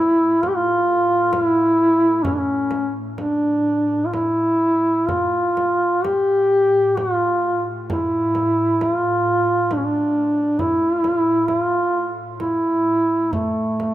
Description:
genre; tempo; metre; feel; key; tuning
caucasian folk, Caucasian lament; 65 BPM; 3/4; uneven beats, rubato; unclear; A4 = 441 Hz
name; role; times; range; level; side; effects
mellow duduk; melody; 0.0-13.9 s; A3 to G4; -17 LUFS; equal; none
ethereal airy pad; drone; 0.0-13.9 s; A2; -33 LUFS; equal; ensemble chorus, built-in reverb, phaser
frame drum; percussion; 0.4-13.9 s; none; -31 LUFS; right 2 dB; none
room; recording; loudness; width
light reverb, studio reverb; rough home demo mix; -17 LUFS; side -13 dB against mid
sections
0.0-13.9 A section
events
none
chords
none

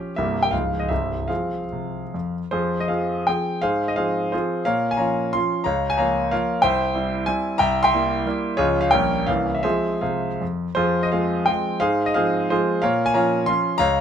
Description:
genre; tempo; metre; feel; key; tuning
classical, romantic triple-time dance for piano with dotted rhythms; 137-196 BPM; 3/4; rubato; F minor; A4 = 440 Hz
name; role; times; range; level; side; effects
bright concert grand piano; solo; 0.0-14.0 s; C1 to C6; -19 LUFS; equal; none
room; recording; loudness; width
little or no reverb; close, detailed microphones; -19 LUFS; side -8 dB against mid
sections
0.0-2.5 A section; 2.5-10.8 B section; 10.8-14.0 B section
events
none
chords
0.2 C7; 0.5 Db; 0.9 C; 1.3 Fm; 3.6 Fm/Ab; 4.7 Bbm; 5.7 Bbm/Db; 6.6 C; 7.6 C7; 8.6 Db; 8.9 Gdim/Bb; 9.3 C7b9; 9.6 Fm; 11.8 Fm/Ab; 12.8 Bbm

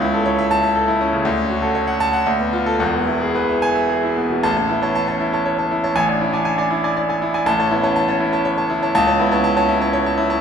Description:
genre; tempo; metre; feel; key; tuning
classical, virtuoso piano study; 120 BPM; 3/4; rubato; A major; A4 = 441 Hz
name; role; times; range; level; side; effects
bright grand piano; solo; 0.0-10.4 s; E1 to A5; -16 LUFS; equal; none
room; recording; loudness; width
wet recital hall reverb, RT60 1.7 s; recorded in a church or concert hall; -16 LUFS; side -7 dB against mid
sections
0.0-4.4 A section; 4.4-10.4 B section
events
none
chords
0.0 A/C#; 1.3 Dmaj7; 2.3 Bm7b5/D; 2.8 E; 4.4 A; 6.0 E7/A; 7.5 A; 8.9 A/C#

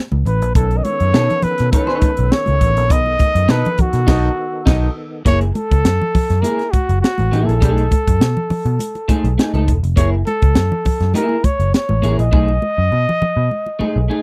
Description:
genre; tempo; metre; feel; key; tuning
funk; 102 BPM; 4/4; straight; unclear; A4 = 440 Hz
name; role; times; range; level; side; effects
vintage muted picked electric bass; bass; 0.1-14.1 s; E1 to B2; -19 LUFS; equal; tube saturation
congas; percussion; 0.1-14.2 s; none; -27 LUFS; equal; none
breathy trumpet; melody; 0.3-14.2 s; F#4 to D#5; -22 LUFS; equal; none
crisp fusion drum kit; drums; 0.3-12.5 s; crash cymbal, hi-hat, kick drum, snare drum; -18 LUFS; equal; none
percussive tonewheel organ; sustained chords; 0.6-5.2 s; D#3 to A4; -31 LUFS; equal; chorus vibrato, slow rotary speaker
electric guitar at the edge of break-up; accompaniment; 1.1-14.2 s; A3 to D#5; -22 LUFS; equal; analog chorus
room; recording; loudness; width
little or no reverb; dry, close 1970s-style studio recording; -16 LUFS; mono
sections
0.0-5.3 A section; 5.3-14.2 B section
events
band accent 4.1-5.3; drum fill 12.3-14.2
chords
0.0 B9; 5.3 F#9; 7.6 B13; 10.0 F#9; 12.3 B13

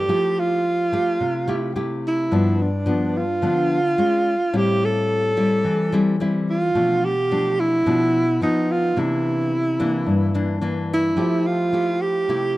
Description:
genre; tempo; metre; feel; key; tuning
bossa nova; 108 BPM; 4/4; straight; F major; A4 = 440 Hz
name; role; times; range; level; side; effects
breathy alto saxophone; melody; 0.0-12.6 s; D4 to A4; -20 LUFS; right 1 dB; none
nylon-string guitar; accompaniment; 0.0-12.6 s; G2 to G4; -22 LUFS; left 2 dB; none
warm grand piano; accompaniment; 11.1-12.6 s; F3 to E5; -30 LUFS; right 4 dB; none
room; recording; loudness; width
light reverb, studio ambience; dry, close 1970s-style studio recording; -18 LUFS; side -17 dB against mid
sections
0.0-12.6 A section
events
none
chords
0.1 Fmaj9; 2.3 G7; 4.0 Db/Ab; 4.5 Am7; 6.7 G9/B; 8.4 Ebsus2/F; 9.0 C9; 11.2 Fmaj9

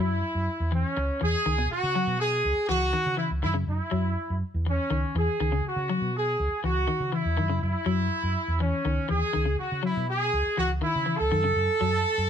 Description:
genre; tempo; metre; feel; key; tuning
afrobeat; 122 BPM; 4/4; straight; C# minor; A4 = 440 Hz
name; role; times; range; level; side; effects
warm horn section; melody; 0.0-12.3 s; C#4 to A4; -27 LUFS; right 1 dB; none
electric guitar at the edge of break-up; arpeggios; 0.0-12.0 s; B2 to F#3; -30 LUFS; left 5 dB; none
hollow-body short-scale fingered electric bass; bass; 0.0-12.3 s; C#2 to C#3; -28 LUFS; right 1 dB; none
room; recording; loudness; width
light reverb; band playing live in one room; -24 LUFS; side -8 dB against mid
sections
0.0-12.3 A section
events
none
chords
0.0 F#5; 1.5 C#m9; 3.4 F#5; 5.4 C#m9; 7.4 F#5; 9.3 C#m9; 11.3 N.C.

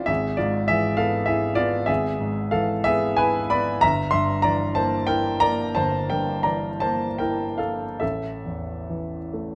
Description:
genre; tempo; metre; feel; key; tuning
classical, romantic nocturne for solo piano; 45-70 BPM (dotted quarters); 12/8; rubato; unclear; A4 = 440 Hz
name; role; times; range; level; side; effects
clear grand piano; solo; 0.0-9.6 s; G1 to C6; -23 LUFS; equal; none
room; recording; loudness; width
moderate recital hall reverb, RT60 1.7 s; close, detailed microphones; -23 LUFS; mono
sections
0.0-9.6 A section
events
none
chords
0.1 E/G#; 3.8 Edim/G; 8.0 A5

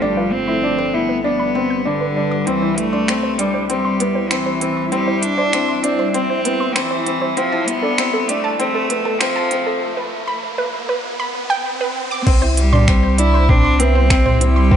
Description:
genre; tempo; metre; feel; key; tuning
piano and strings electronica; 98 BPM; 4/4; straight; C major; A4 = 440 Hz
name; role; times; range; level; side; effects
rich cello; melody; 0.0-14.8 s; D3 to E4; -20 LUFS; equal; low-pass filter
granular cloud pad; sustained chords; 0.0-14.8 s; F3 to E5; -26 LUFS; equal; built-in reverb, sidechain pumping
warm upright piano; riff; 0.0-14.8 s; B3 to F4; -21 LUFS; left 2 dB; none
warm sub bass; bass; 0.0-14.8 s; F1 to C2; -19 LUFS; equal; sidechain pumping
organic electronic drum kit; drums; 0.0-14.5 s; crash cymbal, finger snaps, hi-hat, toms; -22 LUFS; right 1 dB; high-pass filter on toms, high-pass filter on hats, high-pass filter on snare, high-pass filter on cymbals, high-pass filter on room
wide unison pluck; arpeggios; 0.2-14.7 s; A4 to G6; -25 LUFS; right 3 dB; sidechain pumping, tape echo
riser and swell; sound effects; 5.6-12.3 s; none; -30 LUFS; right 2 dB; none
electronic kick drum; drums; 12.3-14.8 s; none; -15 LUFS; equal; overdrive
room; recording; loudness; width
moderate echo chamber reverb, RT60 2.1 s; high-pass filter, nothing above 10.9 kHz; -15 LUFS; side -9 dB against mid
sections
0.0-12.3 A section; 12.3-14.8 B section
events
build-up 0.0-12.3; filter sweep on ambient pad 0.0-12.3; filter sweep on synth arpeggio sound 0.0-12.3; filter sweep 0.0-12.3; riser 5.6-12.3; break 9.8-12.3; swell 11.0-12.3; drop 12.3-14.8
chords
0.0 G; 2.5 C; 7.4 F; 9.8 N.C.; 12.3 C

